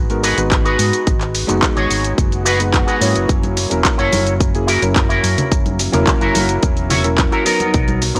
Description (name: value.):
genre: nu-disco, nu disco.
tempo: 108 BPM.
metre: 4/4.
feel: straight.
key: unclear.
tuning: A4 = 440 Hz.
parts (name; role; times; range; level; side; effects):
warm electric grand piano; accompaniment; 0.0-8.2 s; F#3 to A#5; -23 LUFS; equal; sidechain pumping, low-pass filter, tape echo.
hollow-body short-scale fingered electric bass; bass; 0.0-8.2 s; E1 to G#2; -23 LUFS; equal; sidechain pumping.
pop drum kit; drums; 0.1-8.2 s; handclaps, hi-hat, shaker; -23 LUFS; equal; none.
electric guitar with an envelope filter; riff; 0.2-8.2 s; B3 to C#5; -22 LUFS; equal; analog chorus, tape echo.
electronic kick drum; drums; 0.5-7.9 s; none; -20 LUFS; equal; none.
swell; sound effects; 2.4-3.3 s; none; -30 LUFS; equal; none.
congas and bongos; percussion; 3.4-8.1 s; none; -26 LUFS; equal; none.
room: little or no reverb.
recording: dry, gritty hardware recording.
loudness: -16 LUFS.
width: mono.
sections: 0.0-8.2 A section.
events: swell 2.4-3.3.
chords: 0.0 G#m7; 3.3 F#7; 7.5 Bmaj7.